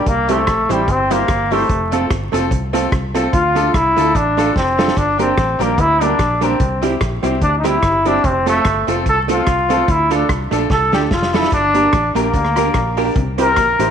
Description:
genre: ska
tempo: 147 BPM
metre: 4/4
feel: swing 56% on 8ths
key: G dorian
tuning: A4 = 440 Hz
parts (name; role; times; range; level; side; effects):
- brilliant trombone; melody; 0.0-13.9 s; G3 to Bb4; -16 LUFS; left 1 dB; slapback echo
- bright upright piano; stabs; 0.0-13.9 s; C4 to C5; -23 LUFS; left 9 dB; none
- fingered electric bass; bass; 0.1-13.9 s; F1 to D2; -22 LUFS; equal; none
- vintage drum kit; drums; 0.1-13.9 s; hi-hat, kick drum, rim click, snare drum; -22 LUFS; equal; none
- hollow-body jazz guitar; accompaniment; 0.3-13.9 s; G3 to C5; -21 LUFS; right 9 dB; slapback echo
- electric guitar through a small old amp; riff; 11.5-13.9 s; G2 to D3; -30 LUFS; left 8 dB; none
room: moderate echo chamber reverb, RT60 2.0 s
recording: 1960s-style stereo with parts hard left and right, vinyl crackle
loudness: -13 LUFS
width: side -8 dB against mid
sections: 0.0-13.9 A section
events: trombone solo 0.0-13.9; drum fill 4.6-5.0, 10.7-11.5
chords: 0.1 C; 1.7 F; 3.3 Dm; 5.0 Gm; 6.6 C; 8.2 F; 9.9 Dm; 11.5 Gm; 13.2 C

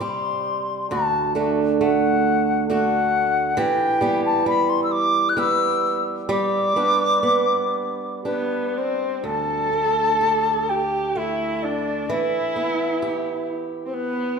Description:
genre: celtic folk, Celtic slow air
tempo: 58-69 BPM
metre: 3/4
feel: rubato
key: D mixolydian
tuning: A4 = 441 Hz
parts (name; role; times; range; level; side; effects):
- wooden flute; melody; 0.0-14.4 s; B4 to F#6; -22 LUFS; left 3 dB; none
- fingerpicked swing-style acoustic guitar; accompaniment; 0.0-14.4 s; D2 to G4; -23 LUFS; right 4 dB; none
- warm viola; second line; 8.3-14.4 s; B3 to A4; -27 LUFS; right 2 dB; none
room: wet recital hall reverb, RT60 1.9 s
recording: minimal, uncompressed stereo recording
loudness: -19 LUFS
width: side -5 dB against mid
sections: 0.0-9.2 A section; 9.2-14.4 B section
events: none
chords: 0.0 C5; 0.9 D; 3.6 Em; 6.3 G; 9.2 Dsus4; 12.1 Em

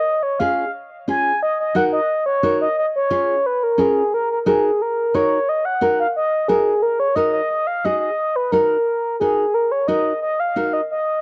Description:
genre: latin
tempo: 177 BPM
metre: 4/4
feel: straight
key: Eb minor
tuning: A4 = 440 Hz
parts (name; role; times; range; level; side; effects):
- reedy FM lead; melody; 0.0-11.2 s; Ab4 to Ab5; -21 LUFS; equal; chorus, tape echo
- nylon-string guitar; accompaniment; 0.4-10.8 s; Db4 to Bb4; -23 LUFS; equal; none
room: light reverb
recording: dry, close 1970s-style studio recording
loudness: -19 LUFS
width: mono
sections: 0.0-6.8 A section; 6.8-11.2 B section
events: none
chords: 0.1 Db; 1.4 Ebm; 2.8 Db; 4.1 Ebm

